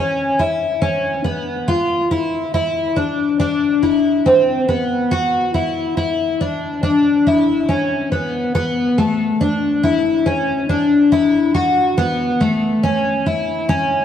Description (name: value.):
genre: dream pop.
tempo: 70 BPM.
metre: 4/4.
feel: straight.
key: A major.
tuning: A4 = 436 Hz.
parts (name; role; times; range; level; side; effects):
fingerpicked twelve-string acoustic guitar; solo; 0.0-14.0 s; A3 to F#4; -15 LUFS; left 1 dB; lush chorus, analog delay.
room: moderate concert hall reverb, RT60 2.1 s.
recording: none.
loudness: -15 LUFS.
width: side -9 dB against mid.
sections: 0.0-8.5 A section; 8.5-14.0 B section.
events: none.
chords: none.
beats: 0.82 | 1.68 2.54 3.40 4.25 | 5.11 5.97 6.83 7.68 | 8.54 9.40 10.25 11.11 | 11.97 12.82 13.68.